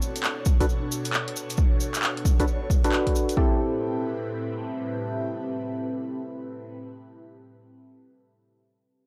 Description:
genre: UK garage, two-step garage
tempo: 134 BPM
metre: 4/4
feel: swing 65% on 16ths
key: A dorian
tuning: A4 = 441 Hz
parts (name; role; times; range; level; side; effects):
- airy breathy pad; sustained chords; 0.0-6.8 s; A2 to C#5; -37 LUFS; equal; chorus, phaser, sidechain pumping
- cabasa; percussion; 0.0-3.4 s; none; -38 LUFS; equal; none
- deep dark ambient pad; texture; 0.0-7.0 s; C4 to A5; -40 LUFS; equal; chorus, built-in reverb, sidechain pumping
- punchy analog drum machine; drums; 0.2-3.4 s; handclaps, hi-hat; -30 LUFS; equal; overdrive
- electronic kick drum; drums; 0.5-3.5 s; none; -25 LUFS; equal; overdrive
- percussive organ stab; stabs; 0.6-6.8 s; C4 to B4; -31 LUFS; equal; subtle chorus, cassette tape, tape echo
room: light reverb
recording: dark, warm production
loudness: -26 LUFS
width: mono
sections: 0.0-3.4 A section; 3.4-7.0 B section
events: none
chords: 0.0 Bm7; 3.4 Am7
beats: 0.24 0.68 1.13 | 1.58 2.03 2.48 2.92 | 3.37 3.82 4.27 4.71 | 5.16 5.61 6.06 6.50

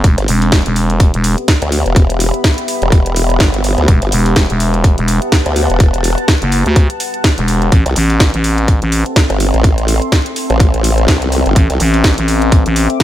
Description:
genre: bass house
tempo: 125 BPM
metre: 4/4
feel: swing 58% on 16ths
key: E minor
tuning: A4 = 441 Hz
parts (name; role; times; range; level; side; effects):
- growling FM bass; bass; 0.0-12.9 s; E1 to D2; -13 LUFS; equal; overdrive, sidechain pumping
- breakbeat sampler-style drum kit; drums; 0.0-13.0 s; hi-hat, snare drum; -26 LUFS; equal; none
- electronic kick drum; drums; 0.0-13.0 s; none; -10 LUFS; equal; none
- garage drum kit; drums; 0.0-13.0 s; hi-hat, snare drum; -18 LUFS; equal; none
- deep dark ambient pad; texture; 0.2-13.0 s; B3 to D6; -20 LUFS; left 1 dB; chorus, built-in reverb, sidechain pumping
- formant-sweep wobble bass; bass; 0.2-11.8 s; E1 to D2; -13 LUFS; equal; chorus, overdrive, sidechain pumping
room: digital ambience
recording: none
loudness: -10 LUFS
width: side -13 dB against mid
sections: 0.0-13.0 A section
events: none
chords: 0.0 Em; 7.7 Am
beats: | 0.04 0.52 1.00 1.48 | 1.96 2.44 2.92 3.40 | 3.88 4.36 4.84 5.32 | 5.80 6.28 6.76 7.24 | 7.72 8.20 8.68 9.16 | 9.64 10.12 10.60 11.08 | 11.56 12.04 12.52 13.00

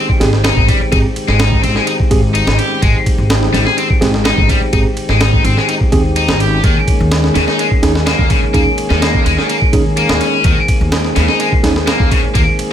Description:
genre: breakbeat, breaks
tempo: 126 BPM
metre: 4/4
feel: straight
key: Eb mixolydian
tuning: A4 = 440 Hz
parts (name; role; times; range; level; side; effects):
- mellow tonewheel organ; sustained chords; 0.0-12.7 s; Eb3 to Ab4; -20 LUFS; left 1 dB; slow rotary speaker, vintage 12-bit sampler grit, sidechain pumping
- high-gain distorted guitar; riff; 0.0-12.4 s; Db3 to Ab4; -17 LUFS; left 3 dB; distortion, dub echo
- breakbeat sampler-style drum kit; drums; 0.1-12.7 s; kick drum, ride cymbal, snare drum; -14 LUFS; equal; none
- mellow tine electric piano; stabs; 0.2-11.7 s; C4 to Ab4; -19 LUFS; right 4 dB; dub echo
- upright bass; bass; 0.2-12.4 s; Ab1 to Eb2; -16 LUFS; equal; none
room: little or no reverb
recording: none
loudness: -10 LUFS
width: side -10 dB against mid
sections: 0.0-12.7 A section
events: none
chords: 0.0 Abmaj7; 6.6 Eb7sus4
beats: 0.45 | 0.92 1.40 1.88 2.35 | 2.83 3.30 3.78 4.26 | 4.73 5.21 5.68 6.16 | 6.64 7.11 7.59 8.06 | 8.54 9.02 9.49 9.97 | 10.45 10.92 11.40 11.88 | 12.35

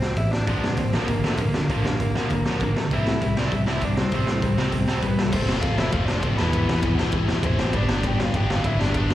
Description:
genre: punk rock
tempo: 199 BPM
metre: 4/4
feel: straight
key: unclear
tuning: A4 = 440 Hz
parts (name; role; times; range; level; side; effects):
- biting lead guitar; melody; 0.0-9.1 s; A3 to G5; -29 LUFS; equal; overdrive
- picked electric bass; bass; 0.0-9.1 s; E1 to A2; -26 LUFS; equal; none
- raw garage drum kit; drums; 0.0-9.1 s; crash cymbal, hi-hat, kick drum, ride cymbal, snare drum; -24 LUFS; equal; none
- distorted electric guitar; riff; 0.5-9.1 s; Bb2 to G4; -28 LUFS; left 8 dB; overdrive, slapback echo
- tight distorted guitar; riff; 0.5-5.3 s; Bb2 to C4; -29 LUFS; right 8 dB; distortion, slapback echo
- high-gain distorted guitar; riff; 5.3-9.1 s; E3 to G4; -31 LUFS; right 1 dB; distortion, slapback echo
room: small room ambience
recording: live gig heard through the venue's PA, recital hall reverb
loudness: -20 LUFS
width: side -13 dB against mid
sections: 0.0-5.3 A section; 5.3-9.1 B section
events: none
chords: 0.5 Bb; 2.9 C; 5.3 F; 6.4 Em; 7.7 G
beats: 0.17 | 0.48 0.78 1.09 1.39 | 1.70 2.00 2.30 2.61 | 2.91 3.21 3.52 3.82 | 4.12 4.42 4.73 5.03 | 5.33 5.63 5.93 6.23 | 6.53 6.83 7.13 7.43 | 7.73 8.03 8.33 8.63 | 8.93

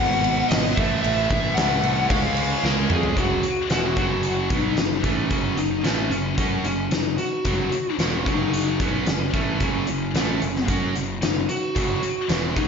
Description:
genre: hard rock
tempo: 112 BPM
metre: 4/4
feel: straight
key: unclear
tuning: A4 = 441 Hz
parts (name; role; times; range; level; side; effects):
- lead guitar through a small cranked amp; melody; 0.0-12.7 s; C#4 to F#5; -25 LUFS; left 2 dB; overdrive, slapback echo
- cranked stack guitar; riff; 0.0-12.7 s; E2 to F#4; -28 LUFS; right 9 dB; overdrive, slapback echo
- heavy high-gain guitar; riff; 0.0-12.7 s; E2 to F#4; -30 LUFS; left 10 dB; distortion
- fuzz picked electric bass; bass; 0.0-12.7 s; E1 to F#2; -28 LUFS; equal; overdrive
- huge arena drum kit; drums; 0.2-12.7 s; crash cymbal, hi-hat, kick drum, snare drum, toms; -25 LUFS; equal; none
room: moderate lush hall reverb, RT60 1.9 s, small room ambience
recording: big arena sound, nothing above 7.5 kHz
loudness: -20 LUFS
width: side -6 dB against mid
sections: 0.0-3.2 A section; 3.2-12.7 B section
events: drum fill 2.6-3.2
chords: 0.0 B5; 0.8 A; 2.1 C#; 3.2 F#5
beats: 0.51 | 1.04 1.57 2.10 2.64 | 3.17 3.70 4.24 4.78 | 5.31 5.85 6.38 6.92 | 7.46 8.00 8.53 9.07 | 9.61 10.15 10.69 11.22 | 11.76 12.30

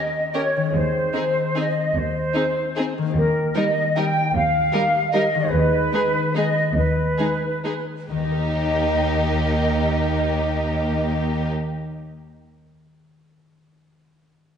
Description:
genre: classical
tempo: 127-164 BPM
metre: 3/4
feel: rubato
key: Eb major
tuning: A4 = 440 Hz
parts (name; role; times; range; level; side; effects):
- flute section; second line; 0.0-11.5 s; Bb4 to G5; -22 LUFS; right 1 dB; none
- concert harp; arpeggios; 0.0-12.4 s; Eb3 to Eb5; -27 LUFS; left 4 dB; none
- rich studio violin section; melody; 0.3-11.5 s; G4 to Bb4; -32 LUFS; left 3 dB; none
- rich chamber violin section; second line; 0.3-11.5 s; Eb4 to G4; -31 LUFS; left 3 dB; none
- rich studio viola section; accompaniment; 0.3-11.5 s; G3 to Db4; -29 LUFS; equal; none
- rich symphonic cello section; bass; 0.7-11.5 s; Eb2; -29 LUFS; right 2 dB; none
- rich symphonic double bass section; bass; 0.7-11.5 s; Eb2; -28 LUFS; right 2 dB; none
room: wet scoring stage reverb, RT60 1.9 s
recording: nothing above 10.3 kHz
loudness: -19 LUFS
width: side -8 dB against mid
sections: 0.0-8.1 A section; 8.1-10.7 B section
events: slowing down 4.9-8.1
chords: 0.0 Eb7; 0.7 Ab/Eb; 3.2 Eb; 5.5 Abm/Eb; 8.1 Eb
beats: 0.35 | 0.75 1.15 1.56 | 1.96 2.35 2.76 | 3.15 3.55 3.96 | 4.34 4.72 5.13 | 5.52 5.93 6.36 | 6.76 7.18 7.65 | 8.10 8.54 8.99 | 9.43 9.87 10.33

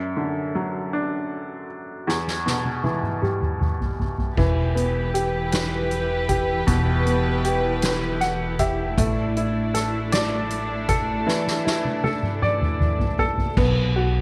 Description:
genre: six-eight pop ballad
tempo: 52 BPM (dotted quarters)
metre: 6/8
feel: straight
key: unclear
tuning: A4 = 440 Hz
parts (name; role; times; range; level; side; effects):
- bright upright piano; accompaniment; 0.0-14.2 s; E2 to F#5; -27 LUFS; equal; none
- soft-mallet drum kit; drums; 2.1-14.1 s; crash cymbal, hi-hat, kick drum, ride cymbal, snare drum, toms; -28 LUFS; equal; none
- warm studio string section; sustained chords; 4.4-13.5 s; E3 to B4; -29 LUFS; equal; none
- upright bass; bass; 4.4-14.2 s; E1 to B1; -28 LUFS; equal; none
room: light reverb, studio reverb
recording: none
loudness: -23 LUFS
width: mono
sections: 0.0-4.4 A section; 4.4-13.6 B section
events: drum fill 2.1-4.4, 11.3-13.6; upright piano fill 7.8-9.0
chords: 0.0 D/F#; 2.1 Em; 9.0 Asus4; 13.6 B5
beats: 0.93 | 2.08 3.23 | 4.38 5.53 | 6.68 7.83 | 8.97 10.12 | 11.27 12.42 | 13.57

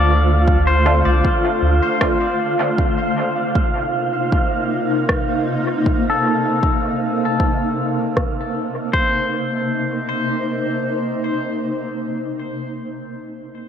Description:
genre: ambient dub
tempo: 78 BPM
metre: 4/4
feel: swing 54% on 16ths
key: C dorian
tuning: A4 = 439 Hz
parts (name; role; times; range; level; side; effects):
- granular cloud pad; sustained chords; 0.0-12.8 s; C3 to C5; -21 LUFS; left 1 dB; built-in reverb
- pedal steel guitar; arpeggios; 0.0-12.7 s; A4 to D5; -23 LUFS; left 3 dB; low-pass filter, tape echo
- soft dub sub bass; bass; 0.0-1.8 s; C2 to D2; -15 LUFS; equal; none
- wind-like tuned noise texture; texture; 0.0-9.0 s; F5; -25 LUFS; right 4 dB; built-in reverb
- electronic kick drum; drums; 0.5-9.1 s; none; -20 LUFS; equal; overdrive
- filtered dub chord stab; stabs; 0.9-2.3 s; A3 to F4; -25 LUFS; right 2 dB; phaser, dub echo
- electronic rim click; drums; 2.0-8.3 s; none; -26 LUFS; equal; overdrive, low-pass filter on hats, low-pass filter on snare, dub echo
room: moderate huge ambient reverb, RT60 3.6 s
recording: none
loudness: -16 LUFS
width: side -8 dB against mid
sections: 0.0-8.9 A section; 8.9-12.0 B section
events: filter sweep on drum 0.0-8.9; filter sweep on pedal steel guitar 0.0-8.9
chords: 0.0 Dm7; 2.8 Cm7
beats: 0.48 1.25 2.01 | 2.78 3.55 4.32 5.09 | 5.86 6.63 7.40 8.17 | 8.94 9.71 10.48 11.24

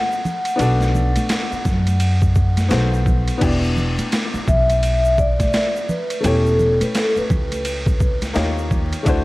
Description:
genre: hip hop, jazz-hop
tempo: 85 BPM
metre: 4/4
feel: swing 62% on 16ths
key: E minor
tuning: A4 = 440 Hz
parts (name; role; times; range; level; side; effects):
- vibraphone with soft mallets; melody; 0.0-8.2 s; A4 to F#5; -21 LUFS; equal; analog delay
- warm upright piano; accompaniment; 0.0-9.2 s; A3 to D#5; -25 LUFS; left 3 dB; none
- egg shaker and congas; percussion; 0.1-9.2 s; none; -29 LUFS; right 1 dB; none
- boom bap sampler-style drum kit; drums; 0.5-9.2 s; crash cymbal, hi-hat, kick drum, ride cymbal, snare drum; -22 LUFS; equal; overdrive
- upright bass; bass; 0.6-9.2 s; E1 to F#2; -19 LUFS; equal; none
room: small room ambience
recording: vinyl crackle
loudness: -16 LUFS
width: side -20 dB against mid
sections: 0.0-3.4 A section; 3.4-9.2 B section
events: vibraphone solo 3.4-9.2; upright piano fill 8.0-9.1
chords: 0.0 D9; 0.6 Bm7; 2.7 B7b9; 3.4 Em7; 6.2 A7/E; 8.4 D#9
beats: | 0.59 1.29 2.00 2.71 | 3.41 4.12 4.82 5.53 | 6.24 6.94 7.65 8.35 | 9.06

